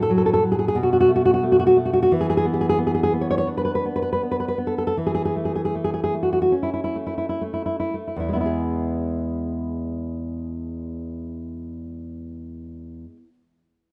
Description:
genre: romantic piece for solo classical guitar.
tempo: 54-92 BPM.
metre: 4/4.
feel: rubato.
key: E major.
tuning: A4 = 440 Hz.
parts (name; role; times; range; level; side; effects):
nylon-string guitar; solo; 0.0-13.3 s; E2 to C#5; -23 LUFS; equal; none.
room: light reverb, small room ambience.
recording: rough home demo mix, nothing above 11.0 kHz.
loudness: -22 LUFS.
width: mono.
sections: 0.0-8.5 A section; 8.5-12.2 B section.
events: slowing down 0.8-8.5.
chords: 0.0 F#m/A; 0.8 F#madd11/B; 2.1 E5; 4.9 A/E; 8.5 E.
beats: 0.11 0.77 1.43 | 2.11 2.78 3.47 4.20 | 4.95 5.73 6.54 7.43 | 8.47 9.41 10.34 11.29.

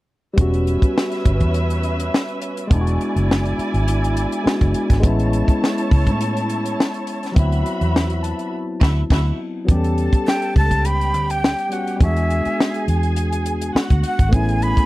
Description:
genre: lush 1970s-style soul.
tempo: 103 BPM.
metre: 4/4.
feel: swing 54% on 16ths.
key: unclear.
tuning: A4 = 440 Hz.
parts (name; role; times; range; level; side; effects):
barky tine electric piano; accompaniment; 0.3-14.9 s; F#3 to A5; -24 LUFS; left 2 dB; overdrive, phaser.
muted studio string section; second line; 0.4-14.9 s; C#4 to B5; -27 LUFS; right 1 dB; none.
vintage muted fingered electric bass; bass; 0.4-14.8 s; E1 to A2; -20 LUFS; equal; none.
compact cocktail drum kit; drums; 0.4-14.9 s; crash cymbal, hi-hat, kick drum, snare drum; -17 LUFS; equal; none.
breathy jazz flute; melody; 10.3-14.9 s; E5 to B5; -22 LUFS; right 1 dB; none.
room: little or no reverb.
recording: dry, close 1970s-style studio recording.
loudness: -16 LUFS.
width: side -18 dB against mid.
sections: 0.4-9.7 A section; 9.7-14.9 B section.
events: band accent 8.5-9.7.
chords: 0.4 Em69; 2.7 E7; 5.0 Amaj7; 7.4 D13; 9.7 Em69; 12.0 E7; 14.3 Amaj7.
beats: | 0.38 0.96 1.54 2.12 | 2.71 3.29 3.87 4.45 | 5.03 5.61 6.20 6.78 | 7.36 7.94 8.52 9.10 | 9.68 10.26 10.84 11.43 | 12.01 12.59 13.17 13.75 | 14.33.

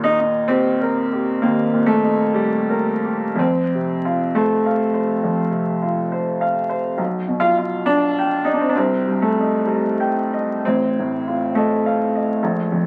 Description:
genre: classical, romantic nocturne for solo piano.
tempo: 54-70 BPM.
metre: 4/4.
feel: rubato.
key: unclear.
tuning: A4 = 436 Hz.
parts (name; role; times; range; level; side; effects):
warm baby grand piano; solo; 0.0-12.9 s; A1 to G5; -19 LUFS; equal; none.
room: moderate studio reverb, RT60 0.7 s.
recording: very old 78 rpm record, vinyl crackle.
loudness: -19 LUFS.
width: mono.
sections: 0.0-12.9 A section.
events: none.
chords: 0.0 Eb; 3.4 F; 7.0 G7/B; 8.8 Cm; 10.6 F7/A.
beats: 0.50 1.43 2.37 | 3.42 4.36 5.24 6.11 | 6.99 7.88 8.76 9.66 | 10.65 11.54 12.42.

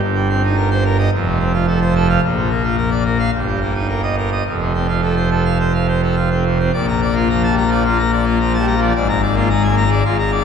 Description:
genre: classical, organ toccata.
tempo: 109 BPM.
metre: 4/4.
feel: straight.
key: Bb major.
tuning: A4 = 435 Hz.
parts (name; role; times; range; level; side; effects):
pipe organ, full organ; solo; 0.0-10.4 s; F1 to Bb5; -14 LUFS; equal; none.
room: wet church reverb, RT60 3.0 s.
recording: minimal, uncompressed stereo recording.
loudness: -14 LUFS.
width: side -7 dB against mid.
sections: 0.0-6.7 A section; 6.7-10.4 B section.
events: none.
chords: 0.0 Cm7/G; 1.1 F; 2.2 Bb; 3.3 Eb/G; 4.5 F; 6.7 Bb; 9.0 Bb7/Ab.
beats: | 0.03 0.58 1.12 1.67 | 2.23 2.78 3.33 3.89 | 4.46 5.03 5.60 6.17 | 6.74 7.30 7.85 8.40 | 8.96 9.50 10.05.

